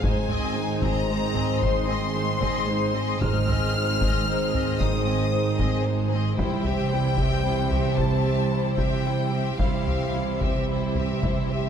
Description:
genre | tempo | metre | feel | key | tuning
cinematic, epic orchestral film score | 75 BPM (dotted quarters) | 12/8 | straight | unclear | A4 = 442 Hz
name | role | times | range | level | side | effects
warm symphonic violin section | melody | 0.0-11.7 s | E5 to F6 | -31 LUFS | left 5 dB | none
warm symphonic violin section | second line | 0.0-11.7 s | E4 to E5 | -33 LUFS | left 5 dB | none
warm symphonic viola section | accompaniment | 0.0-11.7 s | G3 to G4 | -33 LUFS | right 2 dB | none
mellow French horn section | sustained chords | 0.0-11.7 s | B#3 to B#4 | -31 LUFS | left 6 dB | none
mellow trombone section | sustained chords | 0.0-11.7 s | D#3 to G#3 | -32 LUFS | right 4 dB | none
warm symphonic cello section | bass | 0.0-11.7 s | G#2 to C3 | -29 LUFS | right 3 dB | none
warm symphonic double bass section | bass | 0.0-11.7 s | G#1 to C2 | -29 LUFS | right 4 dB | none
taiko ensemble | drums | 0.0-11.7 s | none | -28 LUFS | left 1 dB | none
room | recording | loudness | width
moderate scoring stage reverb, RT60 1.6 s | none | -22 LUFS | side -8 dB against mid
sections
0.0-11.7 A section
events
none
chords
0.0 G#; 6.4 C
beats
| 0.03 0.82 1.61 2.41 | 3.21 4.01 4.80 5.59 | 6.38 7.18 7.98 8.78 | 9.60 10.41 11.22

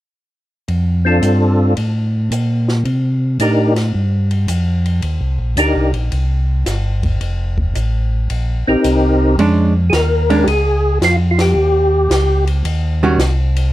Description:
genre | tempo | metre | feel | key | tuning
soul jazz organ trio | 110 BPM | 4/4 | swing 68% on 8ths | Bb major | A4 = 440 Hz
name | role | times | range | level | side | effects
mellow tonewheel organ | bass | 0.7-13.7 s | F1 to C3 | -15 LUFS | equal | slow rotary speaker
compact cocktail drum kit | drums | 0.7-13.6 s | hi-hat, kick drum, ride cymbal, snare drum | -25 LUFS | equal | none
percussive tonewheel organ | melody | 1.0-12.4 s | C4 to Bb4 | -15 LUFS | equal | slow rotary speaker, chorus vibrato, plate reverb
archtop guitar, miked and amplified | accompaniment | 9.4-13.2 s | Eb3 to F#4 | -14 LUFS | right 2 dB | none
room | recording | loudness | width
moderate small room reverb, RT60 0.5 s | dark, warm production | -13 LUFS | side -15 dB against mid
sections
0.7-9.4 A section; 9.4-13.7 B section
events
band accent 11.3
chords
0.7 Bbmaj7/F; 2.9 Cm9; 7.2 F7sus4; 9.4 Db69; 11.6 Eb7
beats
| 0.68 1.23 1.77 2.31 | 2.86 3.40 3.94 4.49 | 5.03 5.58 6.12 6.67 | 7.21 7.75 8.30 8.84 | 9.39 9.93 10.47 11.02 | 11.56 12.11 12.65 13.19

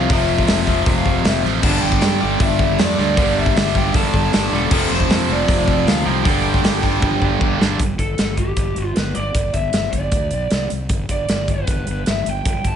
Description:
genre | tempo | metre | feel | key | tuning
hard rock | 156 BPM | 4/4 | straight | unclear | A4 = 439 Hz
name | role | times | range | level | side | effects
lead guitar through a small cranked amp | melody | 0.0-12.8 s | G4 to A5 | -23 LUFS | equal | overdrive
soft additive organ-like pad | sustained chords | 0.0-7.8 s | F3 to A4 | -30 LUFS | equal | none
distorted electric guitar | riff | 0.0-7.8 s | F2 to G3 | -25 LUFS | equal | overdrive
high-gain distorted guitar | riff | 0.0-7.8 s | F2 to G3 | -23 LUFS | right 12 dB | distortion
overdriven semi-hollow guitar | riff | 0.0-7.8 s | F2 to G3 | -25 LUFS | left 12 dB | phaser
fuzz fingered electric bass | bass | 0.0-12.8 s | E1 to G2 | -23 LUFS | equal | overdrive
big rock drum kit | drums | 0.1-12.7 s | crash cymbal, hi-hat, kick drum, snare drum | -19 LUFS | equal | none
room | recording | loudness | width
moderate large studio reverb, RT60 0.9 s, studio reverb | nothing above 10.6 kHz | -15 LUFS | side -8 dB against mid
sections
0.0-7.8 A section; 7.8-12.8 B section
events
drum fill 7.0-7.8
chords
0.0 F5; 1.6 G5; 4.7 F5; 6.3 G5; 10.1 Bm; 10.5 Csus2; 10.9 G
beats
| 0.10 0.48 0.87 1.25 | 1.64 2.02 2.41 2.79 | 3.18 3.56 3.95 4.33 | 4.72 5.11 5.49 5.88 | 6.26 6.65 7.03 7.42 | 7.81 8.19 8.58 8.97 | 9.36 9.74 10.13 10.52 | 10.91 11.29 11.68 12.07 | 12.46

